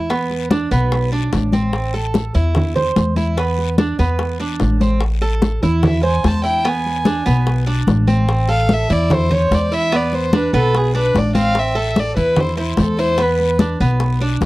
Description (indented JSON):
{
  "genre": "latin, Cuban son and guajira",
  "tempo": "147 BPM",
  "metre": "4/4",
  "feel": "straight",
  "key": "A harmonic minor",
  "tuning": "A4 = 440 Hz",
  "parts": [
    { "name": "Cuban tres", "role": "arpeggios", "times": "0.0-14.5 s", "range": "B3 to C5", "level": "-21 LUFS", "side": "right 3 dB", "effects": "none" },
    { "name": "upright bass", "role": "bass", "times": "0.0-14.5 s", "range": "A1 to E2", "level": "-18 LUFS", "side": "equal", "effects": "none" },
    { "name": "bongos", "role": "percussion", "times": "0.1-14.5 s", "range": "none", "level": "-26 LUFS", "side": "left 4 dB", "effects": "none" },
    { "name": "congas", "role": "percussion", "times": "0.1-14.5 s", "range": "none", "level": "-19 LUFS", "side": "left 1 dB", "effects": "none" },
    { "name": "guiro", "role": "percussion", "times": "0.1-14.5 s", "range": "none", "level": "-36 LUFS", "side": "left 11 dB", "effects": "none" },
    { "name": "warm violin", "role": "melody", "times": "5.9-13.6 s", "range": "E4 to A5", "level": "-19 LUFS", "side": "equal", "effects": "none" }
  ],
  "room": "little or no reverb",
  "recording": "dry, close 1970s-style studio recording",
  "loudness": "-14 LUFS",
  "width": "side -18 dB against mid",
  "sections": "0.0-5.0 A section; 5.0-14.5 B section",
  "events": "violin solo 5.0-14.5",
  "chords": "0.1 E5; 1.7 Am; 3.4 E5; 5.0 Am; 6.6 E7; 8.3 Am; 9.9 E5; 11.6 Am; 13.2 E5",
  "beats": "| 0.10 0.51 0.92 1.33 | 1.74 2.15 2.56 2.97 | 3.38 3.79 4.19 4.60 | 5.01 5.42 5.83 6.24 | 6.65 7.06 7.47 7.88 | 8.29 8.70 9.10 9.51 | 9.92 10.33 10.74 11.15 | 11.56 11.97 12.38 12.79 | 13.19 13.60 14.01 14.42"
}